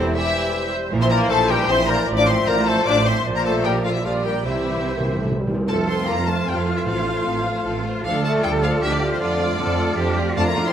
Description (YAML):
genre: quick classical-period movement for symphony orchestra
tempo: 153 BPM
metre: 3/4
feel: straight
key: F major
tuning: A4 = 440 Hz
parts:
  - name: warm symphonic violin section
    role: melody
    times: 0.0-10.7 s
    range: C5 to D6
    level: -26 LUFS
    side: left 4 dB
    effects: none
  - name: dark clarinet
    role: second line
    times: 0.0-10.7 s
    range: F4 to D5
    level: -32 LUFS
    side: left 2 dB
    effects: none
  - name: flute section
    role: second line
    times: 0.0-10.7 s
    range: E4 to F6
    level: -30 LUFS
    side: left 3 dB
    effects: none
  - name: mellow cor anglais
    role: second line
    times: 0.0-10.7 s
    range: C4 to D5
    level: -30 LUFS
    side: right 2 dB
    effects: none
  - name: rich chamber violin section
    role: second line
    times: 0.0-10.6 s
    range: C4 to D5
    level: -30 LUFS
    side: left 4 dB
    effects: none
  - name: dark bassoon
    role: accompaniment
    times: 0.0-10.7 s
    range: E3 to C4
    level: -29 LUFS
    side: right 2 dB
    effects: none
  - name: warm chamber viola section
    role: accompaniment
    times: 0.0-10.6 s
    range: F3 to D5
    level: -30 LUFS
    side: equal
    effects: none
  - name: warm French horn section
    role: sustained chords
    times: 0.0-10.7 s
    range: C3 to D4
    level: -27 LUFS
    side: left 3 dB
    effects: none
  - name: rich chamber double bass section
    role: bass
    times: 0.0-10.6 s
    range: A1 to F2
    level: -25 LUFS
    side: right 3 dB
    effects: none
  - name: warm chamber cello section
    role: bass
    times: 0.0-10.7 s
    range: A2 to A4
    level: -26 LUFS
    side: right 2 dB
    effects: none
  - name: timpani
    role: percussion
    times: 4.5-7.4 s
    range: A2 to C3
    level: -27 LUFS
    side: right 1 dB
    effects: none
room: moderate scoring stage reverb, RT60 1.6 s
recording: close, detailed microphones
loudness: -18 LUFS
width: side -9 dB against mid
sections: 0.0-5.7 A section; 5.7-10.7 B section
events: timpani fill 4.4-5.7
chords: 0.0 C/E; 0.9 C7/Bb; 2.1 F/A; 3.3 Bb; 4.0 Gm/Bb; 4.4 C; 5.7 F; 6.9 F/A; 8.0 Dm; 9.2 Dm/F